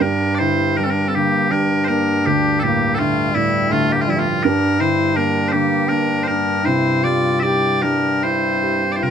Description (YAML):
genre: celtic folk, Celtic slow air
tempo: 74-84 BPM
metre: 3/4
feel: rubato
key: G dorian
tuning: A4 = 440 Hz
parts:
  - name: loud bright bagpipes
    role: melody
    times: 0.0-9.1 s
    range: G2 to E5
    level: -18 LUFS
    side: equal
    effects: none
  - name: warm duduk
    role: second line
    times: 0.0-9.1 s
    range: G3 to G4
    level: -21 LUFS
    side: left 4 dB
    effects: none
  - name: felt-muted upright piano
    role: accompaniment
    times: 0.0-9.1 s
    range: D2 to G4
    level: -21 LUFS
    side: right 4 dB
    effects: none
room: light reverb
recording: close, detailed microphones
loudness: -15 LUFS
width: side -8 dB against mid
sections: 0.0-9.1 A section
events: none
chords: 0.0 Gm; 2.3 Dm; 4.4 Gm; 6.7 C